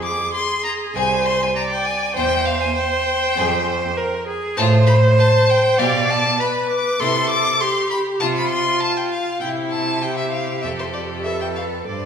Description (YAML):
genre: quick classical-period movement for string quartet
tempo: 99 BPM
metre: 4/4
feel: straight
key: unclear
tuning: A4 = 440 Hz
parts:
  - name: rich violin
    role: melody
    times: 0.0-12.1 s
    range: E4 to C5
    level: -27 LUFS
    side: left 7 dB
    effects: none
  - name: rich violin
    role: second line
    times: 0.0-12.1 s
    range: C5 to D6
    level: -22 LUFS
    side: left 2 dB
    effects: none
  - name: rich viola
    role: accompaniment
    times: 0.0-12.1 s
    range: E4 to D5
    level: -21 LUFS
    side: equal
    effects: none
  - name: clear cello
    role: bass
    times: 0.0-12.1 s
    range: C2 to C3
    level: -22 LUFS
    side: right 2 dB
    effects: none
room: wet recital hall reverb, RT60 1.7 s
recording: recorded in a church or concert hall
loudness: -16 LUFS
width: side -7 dB against mid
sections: 0.0-12.1 A section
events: none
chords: 0.0 Fm (rootless); 2.2 C/E; 3.4 Fm; 4.6 F/A; 5.8 G/B; 7.0 C; 8.2 F5/C; 9.4 C; 10.6 Fadd9(#11)